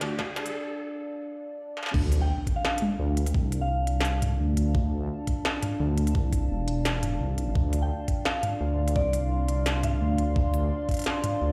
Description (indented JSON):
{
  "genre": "half-time drum and bass",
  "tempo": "171 BPM",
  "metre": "4/4",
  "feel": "swing 54% on 16ths, half-time",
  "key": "D minor",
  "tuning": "A4 = 440 Hz",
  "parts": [
    { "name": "dark analog pad", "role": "sustained chords", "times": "0.0-11.5 s", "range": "D4 to C6", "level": "-36 LUFS", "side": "equal", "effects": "lush chorus, sidechain pumping" },
    { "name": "dark detuned saw bass", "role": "bass", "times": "0.0-11.5 s", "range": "E1 to D2", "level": "-29 LUFS", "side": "equal", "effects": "none" },
    { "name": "industrial drum kit", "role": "drums", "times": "0.0-11.3 s", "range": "crash cymbal, hi-hat, snare drum, toms", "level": "-33 LUFS", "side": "equal", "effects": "high-pass filter on hats, small room ambience, high-pass filter on snare, high-pass filter on toms, high-pass filter on cymbals" },
    { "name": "riser and impact", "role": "sound effects", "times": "0.0-3.3 s", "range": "none", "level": "-36 LUFS", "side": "equal", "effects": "none" },
    { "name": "electronic kick drum", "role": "drums", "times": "0.2-11.0 s", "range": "none", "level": "-28 LUFS", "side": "equal", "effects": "small room ambience" },
    { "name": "soft synth bell", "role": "melody", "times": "2.2-4.1, 7.8-10.3 s", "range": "D5 to G5", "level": "-37 LUFS", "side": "equal", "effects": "chorus, low-pass filter, delay" }
  ],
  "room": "light reverb, digital ambience",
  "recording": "played on a big sound system in a bare room, stone room reverb, high-pass filter",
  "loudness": "-27 LUFS",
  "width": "mono",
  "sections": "0.0-1.9 A section; 1.9-11.5 B section",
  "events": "build-up 0.0-1.9; drum fill 0.0-0.5, 1.8; riser 0.0-0.5; break 0.5-1.9; drop 1.9-11.5; impact 1.9-3.3",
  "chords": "0.0 Dm"
}